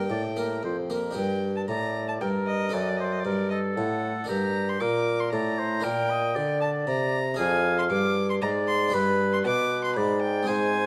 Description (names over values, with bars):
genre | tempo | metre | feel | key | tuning
classical, baroque-style sonata movement with continuo | 116 BPM | 3/4 | straight | G minor | A4 = 441 Hz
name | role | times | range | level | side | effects
rich violin | melody | 0.0-10.9 s | D5 to D6 | -32 LUFS | equal | none
warm oboe | second line | 0.0-10.9 s | G4 to F5 | -34 LUFS | equal | none
harpsichord | accompaniment | 0.0-10.9 s | F2 to D5 | -33 LUFS | equal | none
mellow bassoon | bass | 0.0-10.9 s | F2 to D3 | -30 LUFS | equal | none
room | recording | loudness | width
moderate recital hall reverb, RT60 1.6 s | close, detailed microphones, vinyl crackle | -26 LUFS | mono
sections
0.0-1.2 A section; 1.2-10.9 B section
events
none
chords
0.0 Gm; 2.7 D7/F#; 4.3 Gm; 5.8 Gm/Bb; 7.4 Ddim/F; 8.9 G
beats
0.10 0.63 | 1.16 1.68 2.21 | 2.73 3.25 3.77 | 4.29 4.81 5.32 | 5.84 6.36 6.88 | 7.39 7.90 8.42 | 8.94 9.45 9.96 | 10.48